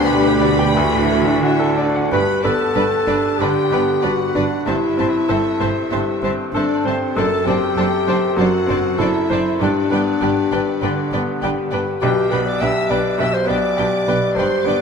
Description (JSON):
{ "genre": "classical, romantic movement for piano and orchestra", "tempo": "85-104 BPM", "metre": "4/4", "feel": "rubato", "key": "G major", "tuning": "A4 = 440 Hz", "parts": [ { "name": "bright baby grand piano", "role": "melody", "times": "0.0-14.8 s", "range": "B1 to G5", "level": "-20 LUFS", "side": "left 1 dB", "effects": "none" }, { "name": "warm studio violin section", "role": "melody", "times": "0.0-14.8 s", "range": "C5 to E6", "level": "-28 LUFS", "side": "left 3 dB", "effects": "none" }, { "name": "mellow clarinet", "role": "second line", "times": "0.0-14.8 s", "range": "C4 to E5", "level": "-20 LUFS", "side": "left 1 dB", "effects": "none" }, { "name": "silver concert flute", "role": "second line", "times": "0.0-1.4 s", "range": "B5", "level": "-33 LUFS", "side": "right 4 dB", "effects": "none" }, { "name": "warm studio violin section", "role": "second line", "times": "0.0-14.8 s", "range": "B4 to B5", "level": "-29 LUFS", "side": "left 2 dB", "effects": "none" }, { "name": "warm bassoon", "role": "accompaniment", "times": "0.0-1.8 s", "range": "G3 to A3", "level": "-27 LUFS", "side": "right 4 dB", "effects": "none" }, { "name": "warm studio viola section", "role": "accompaniment", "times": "0.0-14.8 s", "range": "C4 to C5", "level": "-26 LUFS", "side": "right 2 dB", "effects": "none" }, { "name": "dark French horn section", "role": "sustained chords", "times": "0.0-1.7 s", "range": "D4", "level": "-23 LUFS", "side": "left 10 dB", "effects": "none" }, { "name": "dark studio double bass section", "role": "bass", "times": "0.0-14.7 s", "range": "F#1 to D2", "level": "-28 LUFS", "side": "right 7 dB", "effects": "none" }, { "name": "mellow tuba", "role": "bass", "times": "0.0-1.9 s", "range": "D2", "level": "-27 LUFS", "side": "right 5 dB", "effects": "none" }, { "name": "rich studio cello section", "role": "bass", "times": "0.0-14.7 s", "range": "F#2 to E3", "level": "-27 LUFS", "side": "right 4 dB", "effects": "none" } ], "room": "wet concert hall reverb, RT60 2.2 s", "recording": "none", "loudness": "-15 LUFS", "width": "side -6 dB against mid", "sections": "0.0-2.1 A section; 2.1-14.8 B section", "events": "none", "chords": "0.0 G/D; 0.7 D; 2.1 G; 4.7 Am7/G; 7.2 D7/F#; 9.6 G; 12.0 G/B" }